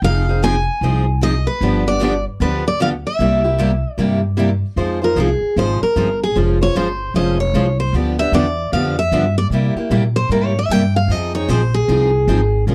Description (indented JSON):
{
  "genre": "acoustic string swing (jazz manouche)",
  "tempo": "152 BPM",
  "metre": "4/4",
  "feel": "swing 63% on 8ths",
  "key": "F minor",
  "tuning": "A4 = 440 Hz",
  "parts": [
    { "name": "picked steel-string acoustic guitar", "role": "melody", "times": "0.0-12.6 s", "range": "Ab4 to Ab5", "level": "-22 LUFS", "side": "equal", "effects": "none" },
    { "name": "picked steel-string acoustic guitar", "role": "accompaniment", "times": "0.0-12.7 s", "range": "C3 to C5", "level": "-23 LUFS", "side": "equal", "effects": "none" },
    { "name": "picked steel-string acoustic guitar", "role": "accompaniment", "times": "0.0-12.7 s", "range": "C3 to C5", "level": "-24 LUFS", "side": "equal", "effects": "none" },
    { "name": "upright bass", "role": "bass", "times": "0.0-12.7 s", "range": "F1 to C3", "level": "-21 LUFS", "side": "equal", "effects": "none" }
  ],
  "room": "light reverb",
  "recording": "dry, close 1970s-style studio recording",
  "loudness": "-17 LUFS",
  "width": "mono",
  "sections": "0.0-4.8 A section; 4.8-12.7 B section",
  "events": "steel-string acoustic guitar solo 4.8-12.7",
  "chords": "0.0 Fm7; 1.6 G7; 3.2 C7; 4.8 Fm11; 6.4 Dbmaj7/F; 7.9 G7; 9.5 C7; 11.1 Fm7"
}